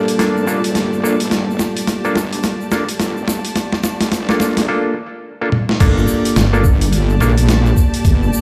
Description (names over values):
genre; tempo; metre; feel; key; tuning
glitch hop; 107 BPM; 4/4; swing 61% on 16ths; G minor; A4 = 440 Hz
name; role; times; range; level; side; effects
dark analog pad; sustained chords; 0.0-8.4 s; G3 to A4; -26 LUFS; equal; chorus, vintage 12-bit sampler grit, sidechain pumping
overdriven clav; stabs; 0.0-7.3 s; Bb3 to A4; -22 LUFS; equal; sidechain pumping, low-pass filter, delay
wobble bass; bass; 0.0-8.3 s; F1 to Bb1; -19 LUFS; equal; chorus, tube saturation, high-pass filter
rich studio string section; texture; 0.0-8.4 s; G4 to A5; -30 LUFS; equal; sidechain pumping
boom bap sampler-style drum kit; drums; 0.1-8.2 s; crash cymbal, hi-hat, snare drum, toms; -22 LUFS; equal; overdrive, studio ambience
tube shaker; percussion; 0.1-8.4 s; none; -34 LUFS; equal; none
electronic kick drum; drums; 5.8-8.2 s; none; -14 LUFS; equal; overdrive, studio ambience
room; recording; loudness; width
light reverb; played on a big sound system in a bare room, large studio reverb; -16 LUFS; mono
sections
0.0-5.8 A section; 5.8-8.4 B section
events
build-up 0.0-5.8; drum fill 0.0-4.7, 5.4-5.8; drop 5.8-8.4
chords
0.0 Gm9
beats
0.20 0.76 | 1.32 1.88 2.44 3.00 | 3.56 4.12 4.68 5.24 | 5.80 6.37 6.93 7.49 | 8.05